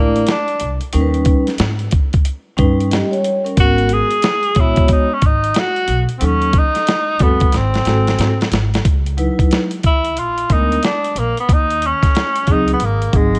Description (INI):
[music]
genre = hip hop, jazz-hop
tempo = 91 BPM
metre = 4/4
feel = swing 63% on 16ths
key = C# dorian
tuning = A4 = 439 Hz
[part]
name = breathy tenor saxophone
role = melody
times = 0.0-13.4 s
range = G#3 to G#4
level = -20 LUFS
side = equal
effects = none
[part]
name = vibraphone with medium mallets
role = accompaniment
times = 0.0-13.4 s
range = F#3 to D#5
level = -21 LUFS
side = equal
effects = none
[part]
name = upright bass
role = bass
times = 0.0-13.4 s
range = G#1 to G#2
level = -22 LUFS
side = equal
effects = none
[part]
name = dusty soul sampler-style drum kit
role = drums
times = 0.2-13.4 s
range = hi-hat, kick drum, snare drum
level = -18 LUFS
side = equal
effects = none
[sound]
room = light reverb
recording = cassette tape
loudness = -16 LUFS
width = mono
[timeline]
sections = 0.0-8.8 A section; 8.8-13.4 B section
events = drum fill 7.5-8.8; tenor saxophone solo 8.8-13.4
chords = 0.0 A#maj9#11; 0.9 D#7b13; 3.6 G#m9; 6.2 D#m7b5; 7.5 G#7b9; 8.8 C#m11; 10.2 A#7b9; 11.5 C#sus4; 12.8 G#7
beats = 0.27 | 0.93 1.59 2.25 2.91 | 3.57 4.23 4.89 5.55 | 6.21 6.87 7.53 8.19 | 8.85 9.51 10.16 10.82 | 11.48 12.14 12.80